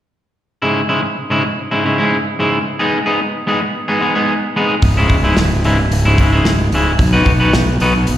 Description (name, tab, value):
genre	quiet-loud alternative rock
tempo	111 BPM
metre	4/4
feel	straight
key	C# minor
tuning	A4 = 439 Hz
part	electric guitar at the edge of break-up	arpeggios	0.6-8.0 s	G#2 to B4	-15 LUFS	equal	slapback echo
part	fuzz fingered electric bass	bass	4.8-8.2 s	C#1 to B1	-14 LUFS	equal	overdrive
part	loose indie drum kit	drums	4.8-8.2 s	hi-hat, kick drum, snare drum	-17 LUFS	equal	none
room	light reverb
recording	live gig heard through the venue's PA, recital hall reverb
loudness	-12 LUFS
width	side -12 dB against mid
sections	0.5-8.2 A section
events	none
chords	0.5 C#m; 2.7 G#m; 4.8 C#m; 7.0 B